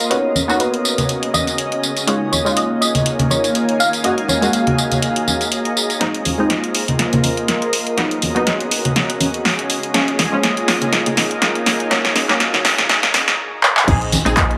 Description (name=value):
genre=deep house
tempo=122 BPM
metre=4/4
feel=swing 56% on 16ths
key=Bb phrygian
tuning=A4 = 440 Hz
part: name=soft round pluck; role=melody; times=0.0-5.2, 14.4-14.6 s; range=Cb5 to F5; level=-25 LUFS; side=equal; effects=ensemble chorus, digital delay
part: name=airy breathy pad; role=sustained chords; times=0.0-14.6 s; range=Bb3 to Eb5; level=-26 LUFS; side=equal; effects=chorus, sidechain pumping
part: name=filtered dub chord stab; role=stabs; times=0.0-14.6 s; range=F3 to Ab4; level=-24 LUFS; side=equal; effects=subtle chorus, sidechain pumping, dub echo
part: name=punchy analog drum machine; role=drums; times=0.0-14.6 s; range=crash cymbal, handclaps, hi-hat, snare drum, tambourine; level=-20 LUFS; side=equal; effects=none
part: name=granular cloud pad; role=texture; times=0.0-13.4 s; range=Db4 to Eb6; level=-27 LUFS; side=equal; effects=built-in reverb, sidechain pumping
part: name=congas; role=percussion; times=0.4-14.2 s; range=none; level=-24 LUFS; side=equal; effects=none
part: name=woody FM bass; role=bass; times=13.9-14.5 s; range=Bb1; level=-23 LUFS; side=equal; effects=sidechain pumping
part: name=electronic kick drum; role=drums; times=13.9-14.5 s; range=none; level=-21 LUFS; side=equal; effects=none
room=moderate plate reverb, RT60 1.4 s, digital ambience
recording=high-pass filter, small room ambience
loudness=-17 LUFS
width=mono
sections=0.0-6.0 A section; 6.0-13.9 B section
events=build-up 6.0-13.9; drum fill 6.0-13.4, 13.6; filter sweep 6.0-13.9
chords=0.1 Db9sus4; 2.1 Eb9sus4; 4.0 Ab9sus4; 6.0 Bb9sus4; 8.0 Db9sus4; 9.9 Eb9sus4; 11.9 Ab9sus4; 13.9 Bb9sus4